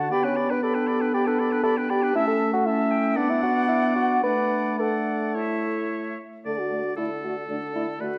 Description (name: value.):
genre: quick classical-period movement for wind quintet.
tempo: 106-120 BPM.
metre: 4/4.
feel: rubato.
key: D major.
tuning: A4 = 441 Hz.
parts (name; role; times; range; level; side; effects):
silver concert flute; melody; 0.0-8.1 s; D5 to B5; -35 LUFS; equal; none.
clear oboe; second line; 0.0-8.2 s; A4 to A5; -33 LUFS; equal; none.
mellow clarinet; accompaniment; 0.0-8.1 s; A3 to G4; -34 LUFS; equal; none.
warm French horn; accompaniment; 0.0-8.2 s; D3 to A4; -30 LUFS; equal; none.
dark bassoon; bass; 0.0-8.2 s; D3 to B4; -28 LUFS; equal; none.
room: wet recital hall reverb, RT60 1.6 s.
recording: vinyl crackle.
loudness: -24 LUFS.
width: mono.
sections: 0.0-6.5 A section; 6.5-8.2 B section.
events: none.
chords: 0.1 G/B; 2.1 A; 3.2 Bm; 4.2 D/A; 5.4 A; 6.5 D5.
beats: | 0.12 0.63 1.14 1.64 | 2.15 2.66 3.17 3.69 | 4.23 4.79 5.35 5.91 | 6.46 6.98 7.50 8.01.